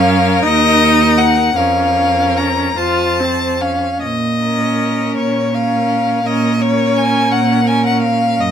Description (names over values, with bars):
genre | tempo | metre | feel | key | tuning
classical, slow romantic movement for string quartet | 48-57 BPM (dotted quarters) | 6/8 | rubato | Bb minor | A4 = 441 Hz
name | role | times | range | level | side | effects
clear violin | melody | 0.0-8.4 s | Bb4 to C5 | -22 LUFS | left 8 dB | none
clear violin | second line | 0.0-8.5 s | Db5 to Bb5 | -16 LUFS | left 3 dB | none
rich viola | accompaniment | 0.0-8.4 s | C4 to F4 | -19 LUFS | right 3 dB | none
rich cello | bass | 0.0-8.5 s | Eb2 to Bb2 | -17 LUFS | right 3 dB | none
room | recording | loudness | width
light reverb | close, detailed microphones | -12 LUFS | side -8 dB against mid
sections
0.0-8.5 A section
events
none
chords
0.4 Ebm; 1.6 Bbm/F; 2.8 F; 4.0 Bbm